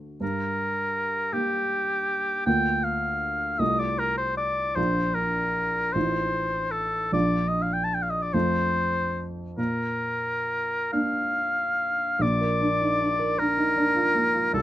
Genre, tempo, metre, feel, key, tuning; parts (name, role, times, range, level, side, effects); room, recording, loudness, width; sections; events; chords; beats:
classical, romantic duo for oboe and grand piano; 43-54 BPM (dotted quarters); 6/8; rubato; Bb major; A4 = 440 Hz
dark grand piano; accompaniment; 0.0-14.6 s; A1 to Bb4; -28 LUFS; right 1 dB
warm oboe; melody; 0.2-14.6 s; G4 to A5; -25 LUFS; left 1 dB
light reverb; close, detailed microphones; -23 LUFS; side -13 dB against mid
0.0-12.2 A section; 12.2-14.6 B section
0.2 Gm; 2.5 Bb/D; 3.6 F/C; 4.8 Bb; 6.0 F7/A; 7.1 Bb; 8.3 F; 9.6 Bb
| 0.21 1.33 | 2.47 3.60 | 4.78 5.96 | 7.14 8.34 | 9.58 10.94 | 12.22 13.39 | 14.54